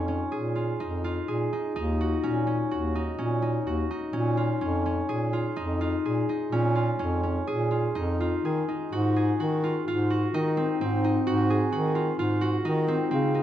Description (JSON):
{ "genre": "contemporary instrumental, chamber music in an uneven meter", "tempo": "126 BPM", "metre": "5/4", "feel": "straight", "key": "unclear", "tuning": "A4 = 440 Hz", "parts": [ { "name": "concert harp", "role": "arpeggios", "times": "0.0-13.4 s", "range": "C4 to Ab4", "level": "-27 LUFS", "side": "left 1 dB", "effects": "none" }, { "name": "warm bass clarinet", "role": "bass", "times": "0.0-13.4 s", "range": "Eb2 to Eb3", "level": "-27 LUFS", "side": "right 1 dB", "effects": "none" } ], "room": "moderate concert hall reverb, RT60 2.1 s", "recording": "dark, warm production", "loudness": "-24 LUFS", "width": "side -11 dB against mid", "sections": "0.0-8.9 A section; 8.9-13.4 B section", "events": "none", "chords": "0.0 Bbm7; 1.8 Ebm7; 4.1 Bbm7; 8.9 Ab7" }